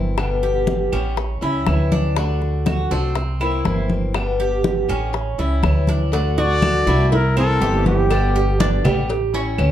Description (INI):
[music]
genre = latin, Cuban son and guajira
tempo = 121 BPM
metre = 4/4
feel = straight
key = D major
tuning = A4 = 440 Hz
[part]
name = picked old ladder-braced acoustic guitar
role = accompaniment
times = 0.0-9.7 s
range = B2 to G4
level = -25 LUFS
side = left 4 dB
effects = none
[part]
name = upright bass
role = bass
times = 0.0-9.7 s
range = G1 to D2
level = -20 LUFS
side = right 1 dB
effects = none
[part]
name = bongos and cowbell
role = percussion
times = 0.2-9.7 s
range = none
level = -28 LUFS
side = left 8 dB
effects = none
[part]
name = claves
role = percussion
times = 0.2-9.7 s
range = none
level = -34 LUFS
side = right 2 dB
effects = none
[part]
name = congas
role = percussion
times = 0.2-9.7 s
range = none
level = -24 LUFS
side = left 1 dB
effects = none
[part]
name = Cuban tres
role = arpeggios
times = 0.4-9.7 s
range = C4 to D5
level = -24 LUFS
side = right 5 dB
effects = none
[part]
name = breathy trumpet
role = melody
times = 6.4-8.8 s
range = G4 to D5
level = -22 LUFS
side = left 2 dB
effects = plate reverb
[part]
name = flamenco guitar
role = second line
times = 6.4-8.8 s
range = B3 to F#4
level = -25 LUFS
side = right 1 dB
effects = none
[sound]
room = moderate large studio reverb, RT60 0.8 s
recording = dark, warm production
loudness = -17 LUFS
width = side -11 dB against mid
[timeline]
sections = 0.0-6.1 A section; 6.1-9.7 B section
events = drum fill 5.9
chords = 0.2 G; 1.2 A7; 2.2 D; 3.2 C7; 4.1 G; 5.1 A7; 6.1 D; 7.1 C7; 8.1 G; 9.1 A7